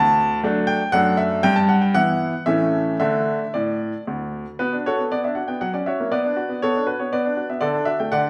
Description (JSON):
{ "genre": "classical-period piano sonatina", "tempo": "119 BPM", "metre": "3/4", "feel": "rubato", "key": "D major, B minor from 4.6 s", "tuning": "A4 = 440 Hz", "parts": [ { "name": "clear baby grand piano", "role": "solo", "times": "0.0-8.3 s", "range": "D2 to A5", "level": "-21 LUFS", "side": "equal", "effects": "none" } ], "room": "wet recital hall reverb, RT60 1.4 s", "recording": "none", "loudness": "-21 LUFS", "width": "mono", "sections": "0.0-4.6 A section; 4.6-8.3 B section", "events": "none", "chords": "0.0 D; 0.9 D/F#; 1.4 Em/G; 2.5 A; 3.0 D5; 4.6 Bm; 5.6 F#7; 6.1 Bm; 7.6 D" }